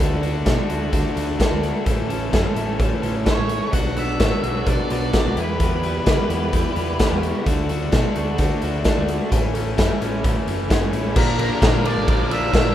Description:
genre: indie rock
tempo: 129 BPM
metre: 4/4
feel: straight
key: D major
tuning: A4 = 440 Hz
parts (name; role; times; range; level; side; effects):
- crunchy overdriven guitar; riff; 0.0-12.7 s; E3 to A4; -26 LUFS; left 7 dB; none
- overdriven electric guitar; riff; 0.0-12.7 s; E2 to C#5; -28 LUFS; right 8 dB; wide subtle chorus, analog delay
- hollow-body short-scale picked electric bass; bass; 0.0-12.7 s; F#1 to C#3; -26 LUFS; equal; none
- raw garage drum kit; drums; 0.0-12.6 s; crash cymbal, hi-hat, kick drum, ride cymbal, snare drum; -20 LUFS; equal; none
- octave-fuzz lead guitar; melody; 3.3-7.2, 11.2-12.7 s; Bb4 to F#5; -28 LUFS; equal; distortion
- synth chime; second line; 11.2-12.7 s; Bb5 to E6; -34 LUFS; right 3 dB; none
room: small room ambience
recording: rough home demo mix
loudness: -18 LUFS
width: side -11 dB against mid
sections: 0.0-11.2 A section; 11.2-12.7 B section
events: none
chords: 0.0 D; 1.9 A; 3.7 Bmadd9; 5.4 Em; 7.5 D; 9.3 A; 11.2 Bbmaj7

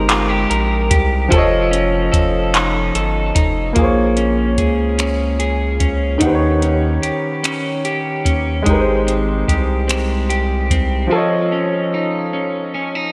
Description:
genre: slow six-eight R&B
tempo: 49 BPM (dotted quarters)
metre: 6/8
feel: straight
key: Bb dorian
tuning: A4 = 439 Hz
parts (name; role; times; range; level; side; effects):
- electric guitar at the edge of break-up; second line; 0.0-13.1 s; Eb3 to Bb4; -22 LUFS; equal; subtle chorus, delay
- clear baby grand piano; accompaniment; 0.0-13.1 s; Eb3 to F#5; -22 LUFS; equal; none
- round analog bass; bass; 0.0-11.1 s; F1 to Eb2; -22 LUFS; equal; none
- soft vintage rhythm box; drums; 0.1-10.9 s; finger snaps, handclaps, hi-hat, kick drum; -21 LUFS; equal; none
room: moderate lush hall reverb, RT60 2.9 s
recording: dreamy mix soaked in reverb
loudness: -17 LUFS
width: mono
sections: 0.0-3.8 A section; 3.8-13.1 B section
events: none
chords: 0.0 Abmaj9; 1.3 F7b13; 3.8 Bbm9; 6.2 Eb7alt; 8.7 Abmaj9; 11.1 F7b13

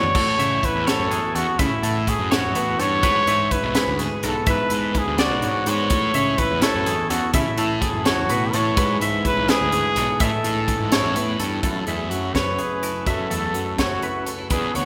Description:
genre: math rock and midwest emo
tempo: 84 BPM (dotted quarters)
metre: 6/8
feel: straight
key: A major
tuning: A4 = 440 Hz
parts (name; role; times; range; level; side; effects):
- breathy trumpet; melody; 0.0-14.9 s; E4 to C#5; -26 LUFS; equal; none
- twelve-string electric guitar; accompaniment; 0.0-14.9 s; E2 to G#4; -31 LUFS; equal; none
- twangy electric guitar; arpeggios; 0.0-14.9 s; G#4 to F#5; -29 LUFS; equal; none
- crisp fusion drum kit; drums; 0.0-14.9 s; crash cymbal, hi-hat, kick drum, snare drum, toms; -27 LUFS; equal; none
- fuzz picked electric bass; bass; 0.2-14.9 s; B1 to C#3; -28 LUFS; equal; overdrive
room: wet cathedral reverb, RT60 4.0 s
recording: recorded in a church or concert hall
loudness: -21 LUFS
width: mono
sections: 0.2-11.6 A section; 11.6-14.9 B section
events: drum fill 0.0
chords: 0.2 A6; 3.0 E7; 5.9 A69; 8.8 E7; 10.2 Amaj9; 11.6 F#m9

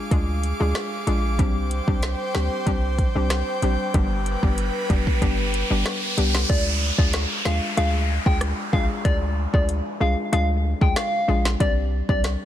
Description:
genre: dancehall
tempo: 94 BPM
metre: 4/4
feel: straight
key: unclear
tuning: A4 = 435 Hz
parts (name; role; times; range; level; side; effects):
- hollow square pluck; accompaniment; 0.0-12.4 s; G3 to Ab4; -28 LUFS; left 3 dB; chorus
- airy breathy pad; sustained chords; 0.0-6.5 s; Ab4 to D6; -29 LUFS; equal; chorus, sidechain pumping
- warm 808-style bass; bass; 0.1-12.4 s; F1 to Eb2; -24 LUFS; equal; none
- afro-pop drum kit; drums; 0.1-12.4 s; hi-hat, kick drum, rim click, snare drum; -24 LUFS; equal; none
- riser and downlifter; sound effects; 3.7-11.6 s; none; -29 LUFS; right 1 dB; none
- soft struck synth lead; melody; 6.5-12.2 s; D5 to G5; -27 LUFS; left 1 dB; chorus, tape echo
room: little or no reverb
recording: dense, heavily limited modern master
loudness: -20 LUFS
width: side -11 dB against mid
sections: 0.0-6.5 A section; 6.5-12.4 B section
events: riser 3.7-6.5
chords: 0.0 Ddim; 1.4 Csus2; 3.9 G; 6.5 Ddim; 11.6 Csus2

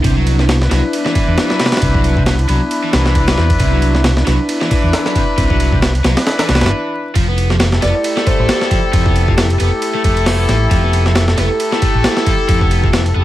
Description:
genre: breakbeat, breaks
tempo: 135 BPM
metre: 4/4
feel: swing 56% on 16ths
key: F lydian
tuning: A4 = 440 Hz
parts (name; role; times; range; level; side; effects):
- phased analog pad; sustained chords; 0.0-13.2 s; A3 to A4; -23 LUFS; right 1 dB; phaser, chorus, sidechain pumping
- overdriven electric guitar; riff; 0.0-13.2 s; B2 to B3; -22 LUFS; equal; digital delay
- fingered electric bass; bass; 0.0-13.2 s; F1 to E2; -15 LUFS; equal; none
- breakbeat sampler-style drum kit; drums; 0.0-13.2 s; hi-hat, kick drum, ride cymbal, snare drum; -16 LUFS; equal; small room ambience
- warm brass ensemble; stabs; 0.6-13.2 s; D4 to B4; -19 LUFS; left 2 dB; vintage 12-bit sampler grit, digital delay
- kalimba; melody; 7.8-8.5 s; C5 to D5; -22 LUFS; equal; small speaker sound, vintage 12-bit sampler grit, digital delay
room: light reverb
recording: vinyl crackle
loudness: -12 LUFS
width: side -14 dB against mid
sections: 0.0-7.2 A section; 7.2-13.2 B section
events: break 6.7-7.2; drop 7.2-13.2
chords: 0.0 Cmaj9; 7.2 Fmaj9

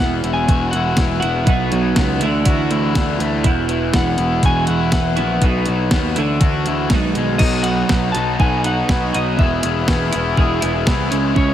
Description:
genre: indie rock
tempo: 121 BPM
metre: 4/4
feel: straight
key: E major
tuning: A4 = 440 Hz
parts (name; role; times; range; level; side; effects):
- electric guitar at the edge of break-up; melody; 0.0-11.5 s; C#5 to A5; -24 LUFS; equal; slapback echo
- raw garage guitar; riff; 0.0-11.5 s; E2 to G#4; -22 LUFS; left 6 dB; overdrive, slapback echo
- twelve-string electric guitar; riff; 0.0-11.5 s; D#3 to G#4; -23 LUFS; right 8 dB; wide subtle chorus, slapback echo
- fuzz picked electric bass; bass; 0.0-11.5 s; E1 to D#2; -21 LUFS; equal; overdrive
- crisp 8-bit digital drum machine; drums; 0.2-11.5 s; crash cymbal, hi-hat, kick drum, snare drum; -19 LUFS; equal; overdrive
room: light reverb, digital ambience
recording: none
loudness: -15 LUFS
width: side -11 dB against mid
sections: 0.0-7.4 A section; 7.4-11.5 B section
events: none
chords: 0.0 Esus2; 1.5 B; 2.2 Dadd9; 3.5 Esus2; 5.4 B; 6.2 Dadd9; 6.9 B6; 7.4 B; 9.4 E

